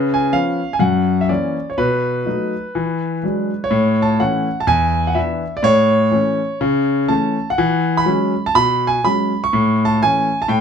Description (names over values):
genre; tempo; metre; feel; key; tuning
jazz, stride piano; 124 BPM; 4/4; swing 64% on 8ths; A major; A4 = 440 Hz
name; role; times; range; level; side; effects
clear grand piano; solo; 0.0-10.6 s; E2 to C#6; -15 LUFS; equal; none
room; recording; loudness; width
wet club ambience, RT60 0.5 s; dark, warm production; -15 LUFS; side -7 dB against mid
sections
0.0-10.6 A section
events
none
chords
0.0 C#7; 0.8 F#7; 1.8 B7; 2.7 E9; 3.7 A; 4.7 E5; 5.6 A; 6.6 A/C#; 7.6 E69; 9.5 A